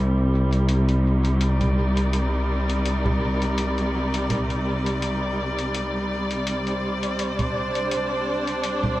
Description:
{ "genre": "ambient dub", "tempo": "83 BPM", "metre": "4/4", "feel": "swing 56% on 16ths", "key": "C minor", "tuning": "A4 = 440 Hz", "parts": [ { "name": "dark chamber string section", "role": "sustained chords", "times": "0.0-9.0 s", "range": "C3 to D5", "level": "-24 LUFS", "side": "equal", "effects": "low-pass filter" }, { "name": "modern bright fingered electric bass", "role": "bass", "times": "0.0-9.0 s", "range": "C2", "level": "-24 LUFS", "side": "equal", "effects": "none" }, { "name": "electronic hi-hat and congas", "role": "drums", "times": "0.5-9.0 s", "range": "none", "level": "-30 LUFS", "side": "equal", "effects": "dub echo" } ], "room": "light reverb", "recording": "echo-heavy mix", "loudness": "-21 LUFS", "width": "side -16 dB against mid", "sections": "0.0-9.0 A section", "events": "filter sweep on string section 0.0-9.0", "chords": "0.0 Cm7" }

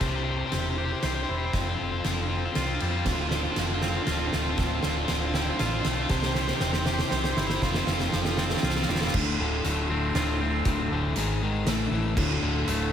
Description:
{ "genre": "post-rock", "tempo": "118 BPM", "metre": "3/4", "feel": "straight", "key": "D minor", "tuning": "A4 = 440 Hz", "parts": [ { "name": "warm studio string section", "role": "sustained chords", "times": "0.0-12.9 s", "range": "D4 to E6", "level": "-40 LUFS", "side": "right 3 dB", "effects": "none" }, { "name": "twangy electric guitar", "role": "arpeggios", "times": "0.0-12.9 s", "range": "D2 to C5", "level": "-32 LUFS", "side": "equal", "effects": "spring reverb, analog delay, slapback echo" }, { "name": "overdriven electric guitar", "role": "riff", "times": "0.0-12.9 s", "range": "D2 to C5", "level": "-30 LUFS", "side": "left 6 dB", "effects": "slapback echo" }, { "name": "hollow-body short-scale fingered electric bass", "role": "bass", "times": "0.0-12.9 s", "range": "D1 to F2", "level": "-30 LUFS", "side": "equal", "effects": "none" }, { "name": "oversized low-tuned drum kit", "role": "drums", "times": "0.0-12.8 s", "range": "crash cymbal, hi-hat, kick drum, ride cymbal, snare drum", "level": "-29 LUFS", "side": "right 1 dB", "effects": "none" }, { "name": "sludgy distorted guitar", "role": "riff", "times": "3.0-9.1 s", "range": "C4 to C5", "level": "-34 LUFS", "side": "right 11 dB", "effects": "overdrive" } ], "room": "moderate lush hall reverb, RT60 2.3 s", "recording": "big arena sound", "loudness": "-24 LUFS", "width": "side -9 dB against mid", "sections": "0.0-9.1 A section; 9.1-12.9 B section", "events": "build-up 0.0-9.1; drum fill 0.0-9.1", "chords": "0.0 C; 1.5 Fadd9; 3.1 Dm7; 6.1 C; 7.6 Fadd9; 9.1 Dm7; 11.2 G#5; 11.7 A5; 12.2 Dm7" }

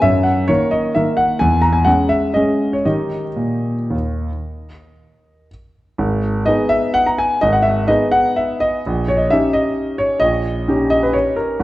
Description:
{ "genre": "classical, piano waltz", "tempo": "111-140 BPM", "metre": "3/4", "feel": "rubato", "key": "unclear", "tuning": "A4 = 441 Hz", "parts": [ { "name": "warm concert grand piano", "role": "solo", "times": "0.0-11.6 s", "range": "G#1 to A#5", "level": "-14 LUFS", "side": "equal", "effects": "none" } ], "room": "moderate recital hall reverb, RT60 1.8 s", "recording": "worn, warbling old tape, cassette tape, warbly pitch drift", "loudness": "-14 LUFS", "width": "side -16 dB against mid", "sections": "0.0-6.0 A section; 6.0-11.6 B section", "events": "none", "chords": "0.0 D#m/F#; 1.4 C#m/E; 2.9 D#; 6.0 G#m; 8.8 D#7/A#" }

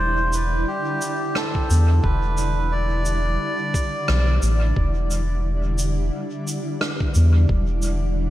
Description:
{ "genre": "ambient dub", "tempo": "88 BPM", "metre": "4/4", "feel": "swing 57% on 16ths", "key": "E minor", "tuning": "A4 = 441 Hz", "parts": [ { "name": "melodica", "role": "melody", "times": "0.0-4.4 s", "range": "G4 to D5", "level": "-26 LUFS", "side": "equal", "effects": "dub echo" }, { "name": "granular cloud pad", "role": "sustained chords", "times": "0.0-8.3 s", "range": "D3 to D5", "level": "-28 LUFS", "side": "equal", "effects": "built-in reverb" }, { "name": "soft dub sub bass", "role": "bass", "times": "0.0-8.3 s", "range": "E1 to E2", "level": "-19 LUFS", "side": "equal", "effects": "none" }, { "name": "shaker and rim click", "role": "drums", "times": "0.3-8.0 s", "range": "none", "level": "-30 LUFS", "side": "equal", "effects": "dub echo" }, { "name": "electronic kick drum", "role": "drums", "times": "1.5-7.7 s", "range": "none", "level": "-23 LUFS", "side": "equal", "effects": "none" } ], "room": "light reverb, small room ambience", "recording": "echo-heavy mix", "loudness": "-19 LUFS", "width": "side -14 dB against mid", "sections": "0.0-8.3 A section", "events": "none", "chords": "0.0 Em7" }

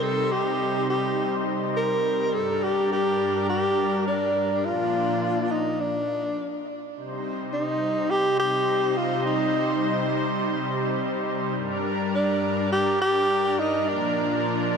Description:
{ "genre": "synthwave", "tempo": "104 BPM", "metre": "4/4", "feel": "straight", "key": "C minor", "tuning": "A4 = 440 Hz", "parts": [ { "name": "breathy tenor saxophone", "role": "melody", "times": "0.0-14.7 s", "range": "D4 to Bb4", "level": "-24 LUFS", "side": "equal", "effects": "ping-pong delay" }, { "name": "lush unison pad", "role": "sustained chords", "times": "0.0-14.8 s", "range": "G2 to C5", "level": "-26 LUFS", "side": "equal", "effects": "chorus, vintage 12-bit sampler grit" } ], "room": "moderate lush hall reverb, RT60 3.2 s", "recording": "dark, warm production", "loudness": "-22 LUFS", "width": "side -6 dB against mid", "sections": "0.0-7.0 A section; 7.0-14.8 B section", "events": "stop 6.4-7.0", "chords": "0.0 Cm; 2.3 Gm; 4.6 Bb; 7.0 Cm; 11.6 Gm; 13.9 Bb" }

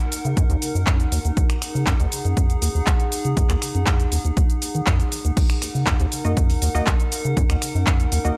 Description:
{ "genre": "acid house", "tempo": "120 BPM", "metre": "4/4", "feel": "straight", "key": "Eb minor", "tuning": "A4 = 436 Hz", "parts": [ { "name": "warbly tape-like pad", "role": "sustained chords", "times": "0.0-8.4 s", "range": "Eb4 to Gb5", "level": "-32 LUFS", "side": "equal", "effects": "chorus, built-in reverb, sidechain pumping" }, { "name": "punchy analog drum machine", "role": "drums", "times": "0.0-8.3 s", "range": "crash cymbal, finger snaps, handclaps, hi-hat, shaker", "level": "-29 LUFS", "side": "equal", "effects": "none" }, { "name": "deep acid bass", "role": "riff", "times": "0.2-8.3 s", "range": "Eb2 to Eb3", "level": "-25 LUFS", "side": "equal", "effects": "ensemble chorus, sidechain pumping, analog delay" }, { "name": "electronic kick drum", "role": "drums", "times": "0.4-8.0 s", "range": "none", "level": "-23 LUFS", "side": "equal", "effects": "none" }, { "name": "filtered dub chord stab", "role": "stabs", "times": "6.2-8.3 s", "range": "Bb3 to Eb5", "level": "-30 LUFS", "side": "equal", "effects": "chorus, analog delay" } ], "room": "little or no reverb", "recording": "none", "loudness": "-21 LUFS", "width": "mono", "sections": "0.0-5.4 A section; 5.4-8.4 B section", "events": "drop 5.4-8.4", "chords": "0.0 Ebm" }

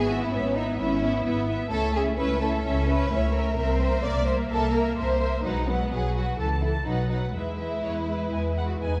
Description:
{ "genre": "quick classical-period movement for string orchestra", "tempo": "129 BPM", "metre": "4/4", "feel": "straight", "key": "E major", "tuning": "A4 = 439 Hz", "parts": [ { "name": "rich symphonic violin section", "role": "melody", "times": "0.0-9.0 s", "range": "B4 to A5", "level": "-37 LUFS", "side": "equal", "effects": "none" }, { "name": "warm symphonic violin section", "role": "second line", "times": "0.0-9.0 s", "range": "B3 to D5", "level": "-31 LUFS", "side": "equal", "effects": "none" }, { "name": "warm symphonic viola section", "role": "accompaniment", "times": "0.0-9.0 s", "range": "E3 to B4", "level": "-34 LUFS", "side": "equal", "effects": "none" }, { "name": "clear symphonic cello section", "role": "bass", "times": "0.0-9.0 s", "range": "E3 to C#4", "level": "-34 LUFS", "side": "equal", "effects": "none" }, { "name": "warm symphonic double bass section", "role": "bass", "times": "0.0-9.0 s", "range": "G#1 to E2", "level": "-30 LUFS", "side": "equal", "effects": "none" } ], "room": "moderate scoring stage reverb, RT60 1.7 s", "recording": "dark, warm production", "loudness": "-26 LUFS", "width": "mono", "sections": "0.0-9.0 A section", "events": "none", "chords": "0.0 E/G#; 1.7 A/C#; 3.6 C7; 5.4 B5; 6.4 A/C#; 6.9 B; 7.3 E" }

